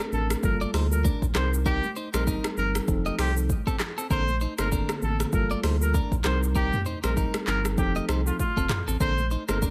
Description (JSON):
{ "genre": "afrobeats", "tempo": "98 BPM", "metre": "4/4", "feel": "swing 58% on 16ths", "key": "C dorian", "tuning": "A4 = 439 Hz", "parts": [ { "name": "mellow tine electric piano", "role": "accompaniment", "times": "0.0-9.7 s", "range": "D3 to Bb4", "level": "-34 LUFS", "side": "equal", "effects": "none" }, { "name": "clean electric guitar", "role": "riff", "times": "0.0-9.7 s", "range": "C4 to Eb5", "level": "-37 LUFS", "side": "equal", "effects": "delay" }, { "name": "deep house drum kit", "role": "drums", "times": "0.0-9.7 s", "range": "finger snaps, handclaps, hi-hat, kick drum, rim click, shaker, toms", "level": "-31 LUFS", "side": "equal", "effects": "overdrive" }, { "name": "congas", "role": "percussion", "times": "0.0-9.6 s", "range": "none", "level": "-41 LUFS", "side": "equal", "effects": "none" }, { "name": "clear trumpet", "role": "melody", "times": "0.1-9.6 s", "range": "F4 to C5", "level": "-34 LUFS", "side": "equal", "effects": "delay" }, { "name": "sub bass with octave", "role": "bass", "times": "0.1-9.7 s", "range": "F1 to D2", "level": "-29 LUFS", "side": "equal", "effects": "none" } ], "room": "little or no reverb", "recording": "none", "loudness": "-26 LUFS", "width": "mono", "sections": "0.0-9.7 A section", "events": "none", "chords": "0.4 Gm9; 1.4 Cm7; 2.9 F7; 4.1 Bbmaj9; 5.3 Gm9; 6.2 Cm7; 7.8 F7; 9.0 Bbmaj9" }